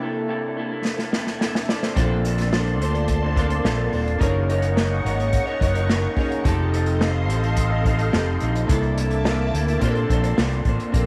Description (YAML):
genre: indie pop, bedroom pop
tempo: 107 BPM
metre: 4/4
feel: straight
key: Bb major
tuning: A4 = 440 Hz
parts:
  - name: chorused retro synth keys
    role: accompaniment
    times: 0.0-11.1 s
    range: C3 to E5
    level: -31 LUFS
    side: equal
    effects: cassette tape
  - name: electric guitar through a small old amp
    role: accompaniment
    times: 0.0-11.1 s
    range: C3 to Db5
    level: -30 LUFS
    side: equal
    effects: lush chorus, warbly pitch drift
  - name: unplugged drum kit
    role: drums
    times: 0.8-11.1 s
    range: hi-hat, kick drum, snare drum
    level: -27 LUFS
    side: equal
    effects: none
  - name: soft string machine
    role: sustained chords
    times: 2.5-10.9 s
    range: Bb3 to D6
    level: -31 LUFS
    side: equal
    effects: phaser, ensemble chorus
  - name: fretless electric bass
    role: bass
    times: 2.0-11.1 s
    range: Eb1 to Bb2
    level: -25 LUFS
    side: equal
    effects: none
room: light reverb, small room ambience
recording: none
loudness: -22 LUFS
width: mono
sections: 0.0-10.9 A section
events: drum fill 0.8-2.0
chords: 0.0 C13; 2.0 Bbmaj9; 4.2 Gb6; 6.5 F7; 8.7 C13; 9.8 Bbmaj9